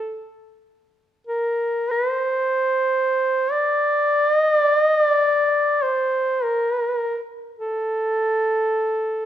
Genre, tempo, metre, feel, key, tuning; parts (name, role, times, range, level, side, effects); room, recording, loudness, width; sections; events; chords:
caucasian folk, Caucasian lament; free time; A phrygian; A4 = 440 Hz
mellow duduk; solo; 0.0-9.3 s; A4 to D5; -18 LUFS; equal
light reverb; minimal, uncompressed stereo recording; -18 LUFS; side -11 dB against mid
0.0-9.3 A section